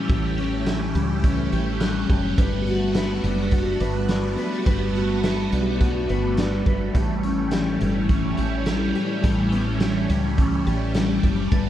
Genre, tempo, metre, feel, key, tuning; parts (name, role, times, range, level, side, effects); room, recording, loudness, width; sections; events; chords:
dream pop; 105 BPM; 4/4; straight; A4 = 440 Hz
phased string machine; sustained chords; 0.0-11.7 s; E3 to G4; -26 LUFS; right 1 dB; ensemble chorus, phaser
mellow electric guitar; arpeggios; 0.0-11.7 s; A2 to B4; -25 LUFS; left 2 dB; analog chorus, digital delay
glockenspiel with hard plastic mallets; texture; 0.0-4.7, 8.4-11.7 s; D6 to A6; -42 LUFS; right 7 dB
woody fretless electric bass; bass; 0.1-11.7 s; F#1 to C#2; -26 LUFS; equal
raw garage drum kit; drums; 0.1-11.7 s; hi-hat, kick drum, snare drum, tambourine; -25 LUFS; equal
moderate studio reverb, RT60 0.7 s; dark, warm production; -20 LUFS; side -12 dB against mid
0.0-11.7 A section
0.0 A7; 2.4 Gmaj9; 7.0 A7